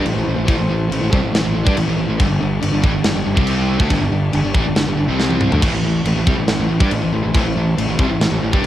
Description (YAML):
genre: heavy metal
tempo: 140 BPM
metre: 4/4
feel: straight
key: A minor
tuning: A4 = 440 Hz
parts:
  - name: dark studio string section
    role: sustained chords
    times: 0.0-8.7 s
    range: C3 to D5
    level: -31 LUFS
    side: equal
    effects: none
  - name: distorted electric guitar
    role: riff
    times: 0.0-8.7 s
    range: G2 to D4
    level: -24 LUFS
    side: equal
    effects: distortion
  - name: sludgy distorted guitar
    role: riff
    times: 0.0-8.7 s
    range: G2 to D4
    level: -23 LUFS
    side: left 6 dB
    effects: overdrive
  - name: sludgy distorted guitar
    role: riff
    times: 0.0-8.6 s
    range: G2 to D4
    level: -23 LUFS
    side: right 6 dB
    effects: overdrive
  - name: fuzz fingered electric bass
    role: bass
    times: 0.0-8.7 s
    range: G1 to G2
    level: -21 LUFS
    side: equal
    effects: overdrive
  - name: tight metal drum kit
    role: drums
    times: 0.1-8.7 s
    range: crash cymbal, kick drum, snare drum, toms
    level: -19 LUFS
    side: equal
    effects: cassette tape
room: little or no reverb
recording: home recording on cassette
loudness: -15 LUFS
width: side -12 dB against mid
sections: 0.0-8.7 A section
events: drum fill 5.2-5.6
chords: 0.0 Am; 2.2 G5; 3.4 C5; 3.8 G5; 5.1 C5; 5.5 G5; 5.6 Am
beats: 0.04 | 0.47 0.90 1.33 1.76 | 2.19 2.62 3.05 3.48 | 3.91 4.34 4.76 5.19 | 5.62 6.05 6.48 6.91 | 7.34 7.77 8.20 8.63